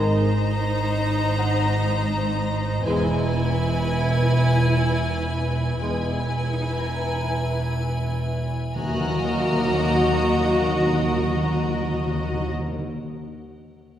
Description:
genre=cinematic, suspense film score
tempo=61 BPM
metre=3/4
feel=straight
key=unclear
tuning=A4 = 438 Hz
part: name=warm symphonic violin section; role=melody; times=0.0-12.5 s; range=G#5 to Bb5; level=-31 LUFS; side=left 2 dB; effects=none
part: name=dark studio violin section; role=second line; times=0.0-12.5 s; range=B4 to Eb5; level=-32 LUFS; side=left 2 dB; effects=none
part: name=warm chamber viola section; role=accompaniment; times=0.0-12.5 s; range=Eb4 to Gb4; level=-29 LUFS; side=equal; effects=none
part: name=icy glass pad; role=sustained chords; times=0.0-12.5 s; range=Bb4 to Bb5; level=-33 LUFS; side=left 1 dB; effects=chorus, built-in reverb
part: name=mellow French horn section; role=sustained chords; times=0.0-12.5 s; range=Bb3 to Bb4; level=-30 LUFS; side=left 2 dB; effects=none
part: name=warm trombone section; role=sustained chords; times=0.0-12.5 s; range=Eb3 to Bb3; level=-30 LUFS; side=right 1 dB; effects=none
part: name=dark chamber cello section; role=bass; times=0.0-12.5 s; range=Eb2 to Ab2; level=-28 LUFS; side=equal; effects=none
part: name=dark chamber double bass section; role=bass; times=0.0-12.5 s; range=E1 to Eb2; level=-26 LUFS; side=right 2 dB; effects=none
part: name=concert harp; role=texture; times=0.0-10.7 s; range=Gb5 to Bb5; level=-39 LUFS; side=left 3 dB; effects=none
part: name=timpani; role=percussion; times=8.8-12.9 s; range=Eb3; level=-27 LUFS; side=left 1 dB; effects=none
part: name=warm chamber violin section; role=texture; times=8.8-11.2 s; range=Eb6 to Gb6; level=-37 LUFS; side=left 3 dB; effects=none
room=wet scoring stage reverb, RT60 2.2 s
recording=heard from further back in the room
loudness=-20 LUFS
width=side -10 dB against mid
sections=0.0-8.8 A section; 8.8-11.7 B section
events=none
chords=0.0 Abadd9; 2.9 E; 8.8 Ebm

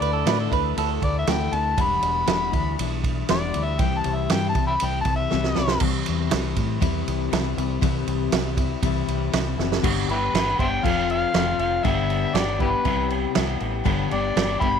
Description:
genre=folk rock and heartland rock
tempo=119 BPM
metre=4/4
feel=straight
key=G mixolydian from 9.8 s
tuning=A4 = 439 Hz
part: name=overdriven harmonica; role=melody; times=0.0-5.8, 10.1-14.8 s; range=E4 to B5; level=-25 LUFS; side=left 2 dB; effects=none
part: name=twelve-string electric guitar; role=second line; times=0.0-1.0 s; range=A4 to B4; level=-28 LUFS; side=right 15 dB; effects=tape echo
part: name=picked steel-string acoustic guitar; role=accompaniment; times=0.0-14.8 s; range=E2 to A4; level=-26 LUFS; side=left 13 dB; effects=none
part: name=deep dub fingered electric bass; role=bass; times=0.0-14.8 s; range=E1 to A2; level=-27 LUFS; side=right 1 dB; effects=none
part: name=vintage drum kit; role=drums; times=0.0-14.7 s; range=crash cymbal, kick drum, ride cymbal, snare drum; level=-25 LUFS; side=right 5 dB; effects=none
room=light reverb, small room ambience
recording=1960s-style stereo with parts hard left and right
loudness=-20 LUFS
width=side -7 dB against mid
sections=0.0-5.8 A section; 5.8-9.8 B section; 9.8-14.8 C section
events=harmonica solo 0.0-5.8; drum fill 5.3-5.8, 9.6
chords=0.0 Dsus2; 1.8 Em7; 3.8 C; 9.8 G; 10.8 F; 11.8 G; 12.9 Cmaj7; 13.9 G

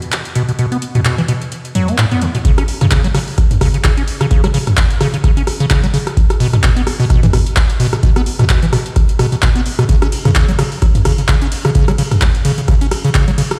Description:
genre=acid house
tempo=129 BPM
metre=4/4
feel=swing 56% on 16ths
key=unclear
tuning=A4 = 443 Hz
part: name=electro analog drum machine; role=drums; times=0.0-13.6 s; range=handclaps, hi-hat, ride cymbal, rim click, toms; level=-20 LUFS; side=equal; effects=none
part: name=acid bass, square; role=riff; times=0.4-13.4 s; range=A2 to C#4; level=-19 LUFS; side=equal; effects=sidechain pumping, delay
part: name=electronic kick drum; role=drums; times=2.4-13.3 s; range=none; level=-16 LUFS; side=equal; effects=none
room=light reverb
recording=played on a big sound system in a bare room, stone room reverb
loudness=-14 LUFS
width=mono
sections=0.0-2.4 A section; 2.4-13.6 B section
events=drop 2.4-13.6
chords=none

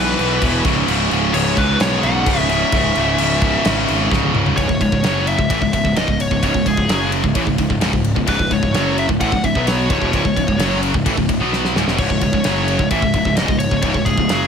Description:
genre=heavy metal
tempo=130 BPM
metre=4/4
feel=straight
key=C# minor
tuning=A4 = 440 Hz
part: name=nasal lead guitar with a parked wah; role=melody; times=0.0-14.5 s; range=G#4 to F#5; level=-21 LUFS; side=left 2 dB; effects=overdrive, ping-pong delay
part: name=high-gain distorted guitar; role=riff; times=0.0-14.5 s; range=C#2 to B3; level=-22 LUFS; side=left 12 dB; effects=distortion
part: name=high-gain distorted guitar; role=riff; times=0.0-14.5 s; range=C#2 to B3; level=-22 LUFS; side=right 12 dB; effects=distortion
part: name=tight distorted guitar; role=riff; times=0.0-14.5 s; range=C#2 to B3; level=-25 LUFS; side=right 1 dB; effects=none
part: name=fuzz picked electric bass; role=bass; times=0.0-14.5 s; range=C#1 to C#2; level=-22 LUFS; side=equal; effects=overdrive
part: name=modern studio drum kit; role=drums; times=0.2-14.4 s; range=crash cymbal, kick drum, ride cymbal, snare drum, toms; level=-21 LUFS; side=equal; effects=none
room=small room ambience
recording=none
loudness=-14 LUFS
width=side -7 dB against mid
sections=0.0-4.6 A section; 4.6-14.5 B section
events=half time 0.0-4.6; drum fill 4.1-4.6, 11.5-12.0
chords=0.0 E5; 0.7 C#m

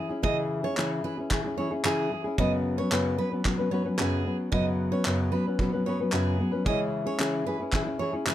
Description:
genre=acoustic pop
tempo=112 BPM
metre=4/4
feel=straight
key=unclear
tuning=A4 = 440 Hz
part: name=nylon-string guitar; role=accompaniment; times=0.0-8.3 s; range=F#2 to B4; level=-27 LUFS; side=left 1 dB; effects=none
part: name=picked steel-string acoustic guitar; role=arpeggios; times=0.0-8.3 s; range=G#4 to D#5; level=-34 LUFS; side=right 6 dB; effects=none
part: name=loose indie drum kit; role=drums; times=0.2-8.3 s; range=handclaps, kick drum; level=-30 LUFS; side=right 1 dB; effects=none
part: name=dark upright piano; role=accompaniment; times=6.6-8.3 s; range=G#3 to C#5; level=-36 LUFS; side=equal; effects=none
room=little or no reverb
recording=none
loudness=-25 LUFS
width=side -12 dB against mid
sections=0.0-8.3 A section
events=none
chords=0.0 C#m; 2.4 F#sus4; 6.7 C#m

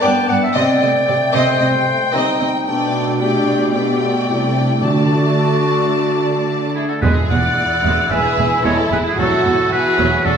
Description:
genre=cinematic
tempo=112 BPM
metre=4/4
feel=straight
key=G major, E mixolydian from 7.0 s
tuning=A4 = 440 Hz
part: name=rich symphonic violin section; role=melody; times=0.0-10.4 s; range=E4 to A5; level=-23 LUFS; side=left 3 dB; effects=none
part: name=mellow clarinet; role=second line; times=0.0-6.7 s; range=D4 to G5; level=-19 LUFS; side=left 1 dB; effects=none
part: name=warm symphonic violin section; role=second line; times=0.0-10.3 s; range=D4 to Eb5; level=-22 LUFS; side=equal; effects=none
part: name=warm symphonic viola section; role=accompaniment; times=0.0-10.4 s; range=F#3 to E4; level=-24 LUFS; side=right 2 dB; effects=none
part: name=mellow French horn section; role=sustained chords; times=0.0-6.8 s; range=G3 to D4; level=-24 LUFS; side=left 2 dB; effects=none
part: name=rich symphonic cello section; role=bass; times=0.0-10.3 s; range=E2 to D3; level=-21 LUFS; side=right 3 dB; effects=none
part: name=timpani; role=percussion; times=4.8-7.8 s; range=E2 to D3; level=-23 LUFS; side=right 1 dB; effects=none
part: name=bright oboe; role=second line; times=6.7-10.4 s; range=Ab4 to F#5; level=-18 LUFS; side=equal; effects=none
part: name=warm symphonic double bass section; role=bass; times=7.0-10.3 s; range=E1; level=-22 LUFS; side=right 3 dB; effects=none
room=wet recital hall reverb, RT60 1.5 s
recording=heard from further back in the room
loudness=-14 LUFS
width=side -7 dB against mid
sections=0.0-7.0 A section; 7.0-10.4 B section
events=none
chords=0.0 Gadd9; 0.6 Cmadd9; 2.7 Gadd9/B; 4.8 D; 7.0 E; 9.2 D/E (rootless)

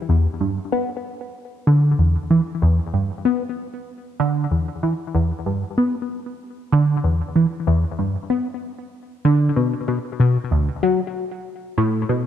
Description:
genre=ambient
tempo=95 BPM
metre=4/4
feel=straight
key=E minor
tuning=A4 = 441 Hz
part: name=tight sequenced synth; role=solo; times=0.1-12.3 s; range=D2 to B3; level=-18 LUFS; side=equal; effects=chorus, ping-pong delay
room=light reverb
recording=cassette tape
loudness=-18 LUFS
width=side -10 dB against mid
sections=0.0-12.3 A section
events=none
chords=none

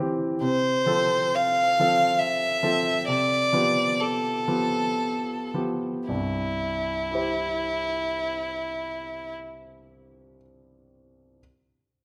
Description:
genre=classical, romantic duo for violin and grand piano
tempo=51-71 BPM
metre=3/4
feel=rubato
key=C major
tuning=A4 = 440 Hz
part: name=clear grand piano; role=accompaniment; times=0.0-11.4 s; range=C2 to C5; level=-30 LUFS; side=equal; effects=none
part: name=clear violin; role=melody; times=0.4-9.3 s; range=E4 to F5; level=-26 LUFS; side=equal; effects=none
room=moderate recital hall reverb, RT60 1.7 s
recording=none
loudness=-25 LUFS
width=mono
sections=0.4-6.1 A section; 6.1-9.2 B section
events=slowing down 0.0-6.1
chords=0.4 F/C; 3.1 G7/C; 6.1 C

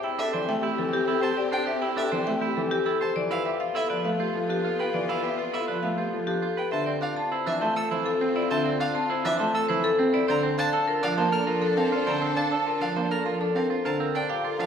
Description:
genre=classical, minimalist pattern music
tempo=101 BPM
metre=3/4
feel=straight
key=D minor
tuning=A4 = 440 Hz
part: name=marimba with hard mallets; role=melody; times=0.0-14.7 s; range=G4 to A5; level=-27 LUFS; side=left 3 dB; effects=none
part: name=rich chamber string section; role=sustained chords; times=0.0-14.7 s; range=B3 to Bb4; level=-32 LUFS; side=left 2 dB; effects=none
part: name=clean electric guitar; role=arpeggios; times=0.0-14.7 s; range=C4 to C5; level=-30 LUFS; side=right 6 dB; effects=none
part: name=warm violin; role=arpeggios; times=0.2-14.7 s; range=E5 to F6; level=-34 LUFS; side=equal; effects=none
part: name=bright grand piano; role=accompaniment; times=0.3-14.7 s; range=D3 to C4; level=-31 LUFS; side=right 2 dB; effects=none
room=wet recital hall reverb, RT60 1.5 s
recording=recorded in a church or concert hall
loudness=-23 LUFS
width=side -7 dB against mid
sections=0.0-6.7 A section; 6.7-14.7 B section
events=none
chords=0.0 Am7; 3.2 G9; 6.7 Dm7; 10.3 Bbmaj7; 13.9 Gm9

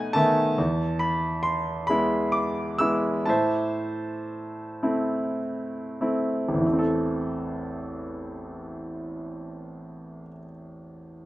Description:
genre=classical, lyrical solo piano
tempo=31-47 BPM (dotted quarters)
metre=6/8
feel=rubato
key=A harmonic minor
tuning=A4 = 438 Hz
part: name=bright concert grand piano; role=solo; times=0.0-11.3 s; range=A1 to E6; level=-25 LUFS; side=equal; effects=none
room=light reverb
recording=close, detailed microphones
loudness=-24 LUFS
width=side -16 dB against mid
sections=0.0-6.6 A section; 6.6-10.2 B section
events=slowing down 0.6-6.6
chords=0.0 B7; 0.6 E; 3.3 Am

